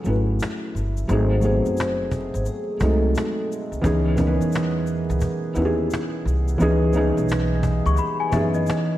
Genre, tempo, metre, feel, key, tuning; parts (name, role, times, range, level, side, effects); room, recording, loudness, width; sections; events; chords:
lo-fi hip hop; 87 BPM; 4/4; swing 65% on 16ths; C# minor; A4 = 440 Hz
felt-muted upright piano; accompaniment; 0.0-9.0 s; E3 to B4; -22 LUFS; equal; cassette tape, low-pass filter
tube shaker; percussion; 0.0-8.9 s; -48 LUFS; left 8 dB
upright bass; bass; 0.1-8.7 s; F#1 to F#2; -23 LUFS; equal
cajon; drums; 0.1-8.9 s; -30 LUFS; equal
vibraphone with soft mallets; melody; 1.1-3.5 s; G#4 to B#4; -28 LUFS; left 2 dB; low-pass filter, analog delay
small celesta; second line; 7.9-9.0 s; D#5 to C#6; -25 LUFS; left 6 dB; low-pass filter, analog delay
moderate lush hall reverb, RT60 1.5 s, studio reverb; dreamy mix soaked in reverb, vinyl crackle; -19 LUFS; side -14 dB against mid
0.0-9.0 A section
0.0 F#m9; 1.1 G#7b9; 3.8 C#m9